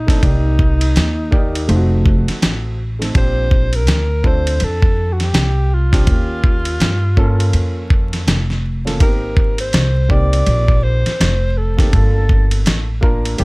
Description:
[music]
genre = hip hop, jazz-hop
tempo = 82 BPM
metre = 4/4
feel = swing 60% on 16ths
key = unclear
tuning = A4 = 440 Hz
[part]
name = mellow alto saxophone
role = melody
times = 0.0-12.7 s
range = Eb4 to D5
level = -22 LUFS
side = equal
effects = plate reverb
[part]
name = upright bass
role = bass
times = 0.0-13.4 s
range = F1 to G2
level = -16 LUFS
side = equal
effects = none
[part]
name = dark concert grand piano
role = accompaniment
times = 0.1-13.4 s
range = A3 to D5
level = -25 LUFS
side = right 1 dB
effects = plate reverb
[part]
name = dusty soul sampler-style drum kit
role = drums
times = 0.1-13.4 s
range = hi-hat, kick drum, ride cymbal, snare drum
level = -15 LUFS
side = equal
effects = none
[sound]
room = little or no reverb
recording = vinyl crackle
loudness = -13 LUFS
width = side -27 dB against mid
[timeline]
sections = 0.0-13.4 A section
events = none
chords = 0.2 Cm7; 1.7 F7b9; 3.1 Bb69; 6.1 Eb9; 9.0 Abmaj9; 11.9 Gm9

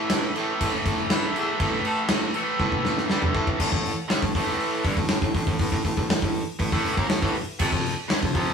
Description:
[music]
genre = hard rock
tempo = 120 BPM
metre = 4/4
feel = straight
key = A minor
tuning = A4 = 440 Hz
[part]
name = cranked stack guitar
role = riff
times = 0.0-8.5 s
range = F2 to Bb3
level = -26 LUFS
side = equal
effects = overdrive
[part]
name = edgy baritone saxophone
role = bass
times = 0.1-8.5 s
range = C2 to A3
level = -29 LUFS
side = equal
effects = none
[part]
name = gated 80s drum kit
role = drums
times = 0.1-8.5 s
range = crash cymbal, hi-hat, kick drum, snare drum, toms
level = -25 LUFS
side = equal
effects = none
[sound]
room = moderate studio reverb, RT60 0.6 s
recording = rough rehearsal-room recording, studio ambience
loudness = -22 LUFS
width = side -6 dB against mid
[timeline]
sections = 0.0-3.6 A section; 3.6-8.5 B section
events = drum fill 2.6-3.6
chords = 0.0 A5; 7.6 F5

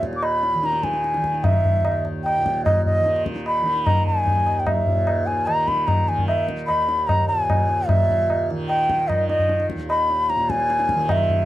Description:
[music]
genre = indian classical, Hindustani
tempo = 149 BPM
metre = 4/4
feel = straight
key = unclear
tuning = A4 = 440 Hz
[part]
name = bansuri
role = melody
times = 0.0-11.5 s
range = Eb5 to D6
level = -20 LUFS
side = equal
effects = none
[part]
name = tanpura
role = drone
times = 0.0-11.5 s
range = Eb2 to Eb3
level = -28 LUFS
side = right 1 dB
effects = stereo widening
[part]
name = tabla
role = percussion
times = 0.0-11.4 s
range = none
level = -23 LUFS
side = equal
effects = none
[sound]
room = small room ambience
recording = dry, close 1970s-style studio recording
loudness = -18 LUFS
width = side -14 dB against mid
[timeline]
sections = 0.0-7.9 A section; 7.9-11.5 B section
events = none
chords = none

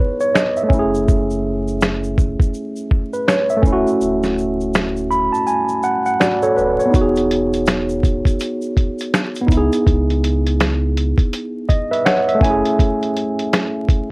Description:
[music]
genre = lo-fi hip hop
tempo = 82 BPM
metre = 4/4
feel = swing 61% on 16ths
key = unclear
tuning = A4 = 439 Hz
[part]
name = mellow tine electric piano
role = accompaniment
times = 0.0-14.1 s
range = A3 to B5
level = -17 LUFS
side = right 1 dB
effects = medium stereo tremolo, cassette tape
[part]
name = egg shaker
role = percussion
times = 0.2-9.9 s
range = none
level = -41 LUFS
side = left 3 dB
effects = none
[part]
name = lo-fi sampler-style drum kit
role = drums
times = 0.4-14.1 s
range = finger snaps, hi-hat, kick drum, snare drum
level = -16 LUFS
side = equal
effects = none
[part]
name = sub bass with octave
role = bass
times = 0.7-12.6 s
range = D1 to C#2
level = -22 LUFS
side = equal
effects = none
[sound]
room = light reverb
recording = worn, warbling old tape, cassette tape, vinyl crackle, warbly pitch drift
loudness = -15 LUFS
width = side -26 dB against mid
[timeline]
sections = 0.0-14.1 A section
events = break 0.0-6.9; kick muted 4.0-6.9; tine electric piano fill 4.7-6.9, 11.3-12.8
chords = 0.0 C#m9; 0.7 F#m9; 3.6 Dmaj9; 6.9 Emaj7; 9.5 C#m9; 12.4 F#m9

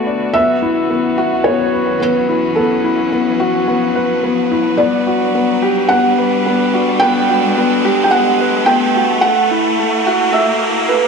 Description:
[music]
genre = piano and strings electronica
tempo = 108 BPM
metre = 4/4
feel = straight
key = unclear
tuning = A4 = 439 Hz
[part]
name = clear string quartet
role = sustained chords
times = 0.0-11.1 s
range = F#3 to D5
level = -22 LUFS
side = right 1 dB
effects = low-pass filter
[part]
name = warm concert grand piano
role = riff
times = 0.0-11.1 s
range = A3 to B4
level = -15 LUFS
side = left 2 dB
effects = digital delay
[part]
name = riser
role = sound effects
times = 0.0-11.1 s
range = none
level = -22 LUFS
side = right 1 dB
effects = none
[part]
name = felt-muted upright piano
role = melody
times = 0.3-11.1 s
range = A4 to G5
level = -16 LUFS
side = right 2 dB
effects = digital delay
[sound]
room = wet recital hall reverb, RT60 1.4 s, small room ambience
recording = high-pass filter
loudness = -12 LUFS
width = side -5 dB against mid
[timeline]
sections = 0.0-11.1 A section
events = build-up 0.0-11.1; riser 0.0-11.1; filter sweep on string quartet 0.0-11.1; filter sweep 0.0-11.1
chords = 0.3 F#7sus4; 4.8 Gmaj7; 9.2 A5

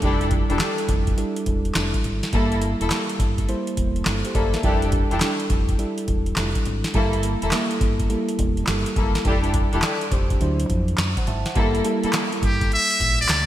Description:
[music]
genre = R&B, new jack swing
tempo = 104 BPM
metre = 4/4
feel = swing 66% on 16ths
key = G dorian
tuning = A4 = 440 Hz
[part]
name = mellow FM electric piano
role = accompaniment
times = 0.0-13.5 s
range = F#3 to A5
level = -26 LUFS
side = right 2 dB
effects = chorus
[part]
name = warm studio string section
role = stabs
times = 0.0-12.2 s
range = Bb3 to A4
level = -27 LUFS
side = left 3 dB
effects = none
[part]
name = deep dub fingered electric bass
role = bass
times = 0.0-13.5 s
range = E1 to F#2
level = -26 LUFS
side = equal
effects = none
[part]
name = booming analog drum machine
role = drums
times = 0.0-13.5 s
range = handclaps, hi-hat, kick drum, snare drum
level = -23 LUFS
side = equal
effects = gated reverb
[part]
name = group handclap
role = percussion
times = 12.1-13.5 s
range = none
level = barely audible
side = none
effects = none
[part]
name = trumpet with metal mute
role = melody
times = 12.5-13.5 s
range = G4 to E5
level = -19 LUFS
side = equal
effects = none
[sound]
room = light reverb, studio reverb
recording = bright 1980s-style digital production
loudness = -19 LUFS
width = side -12 dB against mid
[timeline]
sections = 0.0-11.6 A section; 11.6-13.5 B section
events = none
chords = 0.0 Fmaj13; 2.3 Gm69; 4.6 Fmaj13; 6.9 Gm69; 9.3 Fmaj13; 10.4 D9; 11.6 Gm69

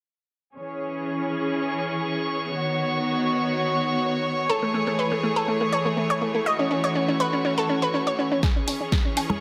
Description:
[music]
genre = progressive house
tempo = 122 BPM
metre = 4/4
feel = straight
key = C# minor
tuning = A4 = 440 Hz
[part]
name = rich studio string section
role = sustained chords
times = 0.6-9.4 s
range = D#3 to C#5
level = -28 LUFS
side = equal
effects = sidechain pumping, low-pass filter
[part]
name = deep house drum kit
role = drums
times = 0.6-9.3 s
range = cabasa, hi-hat, snare drum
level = -32 LUFS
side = equal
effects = sidechain pumping on perc, low-pass filter on perc, low-pass filter on snare, sidechain pumping on hats, low-pass filter on hats, low-pass filter on room
[part]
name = drifting glass-harmonics texture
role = texture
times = 1.2-9.4 s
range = C#6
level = -35 LUFS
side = equal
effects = chorus, built-in reverb, sidechain pumping
[part]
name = analog pluck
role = arpeggios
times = 4.5-9.4 s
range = A3 to D#5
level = -26 LUFS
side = equal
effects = chorus, sidechain pumping, delay
[part]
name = electronic kick drum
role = drums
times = 8.4-9.0 s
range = none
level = -25 LUFS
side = equal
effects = none
[part]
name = woodblock and congas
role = percussion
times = 8.7-9.4 s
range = none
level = -28 LUFS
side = equal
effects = sidechain pumping on perc
[sound]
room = moderate digital room reverb, RT60 1.1 s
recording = none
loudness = -24 LUFS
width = mono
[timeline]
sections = 0.6-8.4 A section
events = drum fill 8.4-9.4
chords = 0.6 C#m; 2.5 Badd9; 4.5 Amaj7; 6.5 F#m7; 8.4 C#m

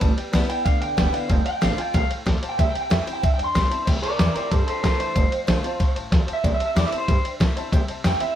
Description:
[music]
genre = rockabilly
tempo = 187 BPM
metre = 4/4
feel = straight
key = C major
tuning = A4 = 440 Hz
[part]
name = picked steel-string acoustic guitar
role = accompaniment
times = 0.0-8.4 s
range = F2 to F4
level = -32 LUFS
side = left 2 dB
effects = none
[part]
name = warm upright piano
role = accompaniment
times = 0.0-8.3 s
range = B4 to A5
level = -35 LUFS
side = left 2 dB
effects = none
[part]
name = upright bass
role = bass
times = 0.0-8.2 s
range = E1 to Bb2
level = -26 LUFS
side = equal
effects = none
[part]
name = lo-fi sampler-style drum kit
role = drums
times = 0.0-8.3 s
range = crash cymbal, kick drum, ride cymbal, snare drum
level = -22 LUFS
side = equal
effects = none
[part]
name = electric guitar through a small old amp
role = melody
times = 0.5-8.4 s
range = A4 to C6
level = -25 LUFS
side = right 1 dB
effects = none
[sound]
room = light reverb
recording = band playing live in one room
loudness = -19 LUFS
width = side -11 dB against mid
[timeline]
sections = 0.0-3.9 A section; 3.9-8.4 B section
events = clean electric guitar solo 3.9-8.4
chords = 0.0 G6; 1.3 F6; 2.6 C6; 5.2 F6; 6.4 C6

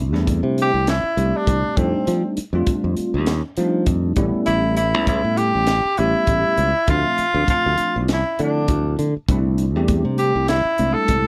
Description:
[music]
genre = electric jazz fusion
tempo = 100 BPM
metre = 4/4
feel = swing 54% on 16ths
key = C major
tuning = A4 = 442 Hz
[part]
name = bell-like tine electric piano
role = accompaniment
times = 0.0-11.3 s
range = F3 to E5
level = -26 LUFS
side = equal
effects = ensemble chorus
[part]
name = modern bright fingered electric bass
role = bass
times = 0.0-11.2 s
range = A1 to F3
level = -23 LUFS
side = equal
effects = none
[part]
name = crisp fusion drum kit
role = drums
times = 0.1-11.2 s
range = hi-hat, kick drum, snare drum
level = -26 LUFS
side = equal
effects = none
[part]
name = clear tenor saxophone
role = melody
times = 0.6-11.3 s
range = C4 to A4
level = -22 LUFS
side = equal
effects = slapback echo
[part]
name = congas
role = percussion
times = 9.3-11.2 s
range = none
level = -32 LUFS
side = equal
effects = none
[sound]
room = little or no reverb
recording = none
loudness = -19 LUFS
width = mono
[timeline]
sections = 0.0-11.3 A section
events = none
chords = 0.0 C6; 1.8 F13; 4.2 A7; 6.9 Dm9; 9.3 C6

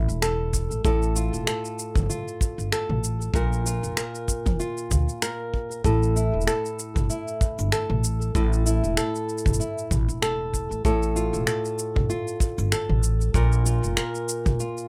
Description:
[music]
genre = folktronica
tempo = 96 BPM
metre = 4/4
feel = swing 56% on 16ths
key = unclear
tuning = A4 = 440 Hz
[part]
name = flamenco guitar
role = arpeggios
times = 0.0-14.9 s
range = A2 to Bb4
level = -30 LUFS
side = equal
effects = low-pass filter, digital delay
[part]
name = upright bass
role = bass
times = 0.0-14.6 s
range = E1 to D2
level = -27 LUFS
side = equal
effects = none
[part]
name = organic electronic drum kit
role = drums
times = 0.1-14.9 s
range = finger snaps, shaker, toms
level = -32 LUFS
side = equal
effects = overdrive
[part]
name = kick drum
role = drums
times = 0.5-14.6 s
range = none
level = -27 LUFS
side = equal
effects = none
[sound]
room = light reverb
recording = rough home demo mix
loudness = -25 LUFS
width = mono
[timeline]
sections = 0.0-14.9 A section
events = none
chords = 0.0 A5; 0.8 F; 3.3 Bb5; 5.8 A5; 10.8 F; 13.3 Bb5

